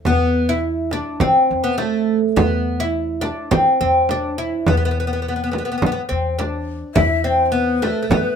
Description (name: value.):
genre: Arabic maqam ensemble.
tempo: 104 BPM.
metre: 4/4.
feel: straight.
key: E maqam hijaz.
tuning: A4 = 440 Hz.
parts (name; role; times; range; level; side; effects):
oud; melody; 0.1-8.4 s; A3 to E4; -18 LUFS; equal; none.
upright bass; bass; 0.1-8.2 s; E2 to E3; -24 LUFS; left 1 dB; none.
frame drum; percussion; 0.1-8.2 s; none; -20 LUFS; right 2 dB; none.
breathy ney; second line; 6.9-8.4 s; B4 to E5; -22 LUFS; left 8 dB; none.
room: light reverb.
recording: minimal, uncompressed stereo recording.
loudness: -16 LUFS.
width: side -7 dB against mid.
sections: 0.0-8.4 A section.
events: none.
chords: none.